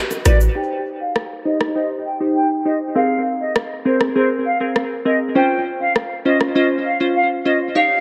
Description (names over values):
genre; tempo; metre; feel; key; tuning
dancehall; 100 BPM; 4/4; straight; C phrygian; A4 = 440 Hz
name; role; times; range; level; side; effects
island pop drum kit; drums; 0.1-6.5 s; hi-hat, rim click, shaker; -24 LUFS; equal; none
silver concert flute; melody; 0.3-8.0 s; C5 to G5; -23 LUFS; equal; low-pass filter, analog delay
glassy wavetable pluck; accompaniment; 0.3-8.0 s; C4 to Db5; -22 LUFS; equal; chorus, low-pass filter, analog delay
clean 808-style bass; bass; 0.3-0.5 s; A1; -16 LUFS; equal; none
room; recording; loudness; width
moderate spring reverb, RT60 2.2 s; echo-heavy mix; -18 LUFS; mono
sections
0.6-8.0 A section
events
filter sweep 0.6-8.0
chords
0.0 Gmaj7; 0.6 Cm; 3.0 Abadd9; 5.4 Dbmaj7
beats
| 0.56 1.16 1.76 2.36 | 2.96 3.56 4.16 4.76 | 5.36 5.96 6.56 7.16 | 7.76